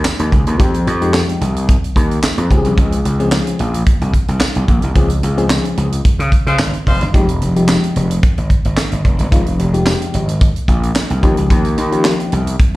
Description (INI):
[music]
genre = early-eighties boogie funk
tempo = 110 BPM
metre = 4/4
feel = straight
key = F minor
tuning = A4 = 435 Hz
[part]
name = gritty slap bass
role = bass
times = 0.0-12.5 s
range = F1 to Db3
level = -16 LUFS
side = equal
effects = overdrive
[part]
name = tight funk drum kit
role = drums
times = 0.0-12.7 s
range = handclaps, hi-hat, kick drum, snare drum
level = -15 LUFS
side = equal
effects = none
[part]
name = tambourine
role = percussion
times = 0.0-12.2 s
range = none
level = -28 LUFS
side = right 3 dB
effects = none
[part]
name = FM electric piano with tremolo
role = accompaniment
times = 0.6-12.4 s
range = F3 to Ab4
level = -19 LUFS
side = left 3 dB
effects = slapback echo
[part]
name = clear horn section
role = second line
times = 6.5-7.0 s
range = Ab3 to C5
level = -21 LUFS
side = left 1 dB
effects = slapback echo
[sound]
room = little or no reverb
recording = live gig heard through the venue's PA, club reverb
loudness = -12 LUFS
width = side -18 dB against mid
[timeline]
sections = 0.0-12.8 A section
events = band accent 5.0-7.1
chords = 0.0 Fm9; 2.5 Dbmaj7; 7.1 Fm9; 11.2 Eb9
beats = 0.05 | 0.59 1.14 1.69 2.23 | 2.78 3.32 3.87 4.41 | 4.96 5.50 6.05 6.59 | 7.14 7.69 8.23 8.78 | 9.32 9.87 10.41 10.96 | 11.50 12.05 12.60